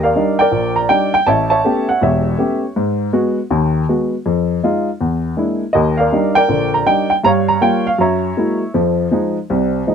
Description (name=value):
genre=solo jazz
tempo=161 BPM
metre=4/4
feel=swing 63% on 8ths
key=unclear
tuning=A4 = 438 Hz
part: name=dark upright piano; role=solo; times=0.0-9.9 s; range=E1 to Bb5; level=-13 LUFS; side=equal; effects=none
room=light reverb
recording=close, detailed microphones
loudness=-13 LUFS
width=side -7 dB against mid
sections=0.0-9.9 A section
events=none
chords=0.0 Ebmaj7; 1.3 A9; 2.8 Abm7; 4.3 Fm7; 5.0 E7#11; 5.7 Ebmaj7; 7.2 Gm7b5; 8.0 Gb9; 8.7 Fm7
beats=0.15 0.53 0.90 | 1.27 1.65 2.02 2.39 | 2.76 3.14 3.51 3.88 | 4.25 4.63 5.00 5.37 | 5.75 6.12 6.49 6.87 | 7.24 7.61 7.99 8.36 | 8.73 9.11 9.48 9.86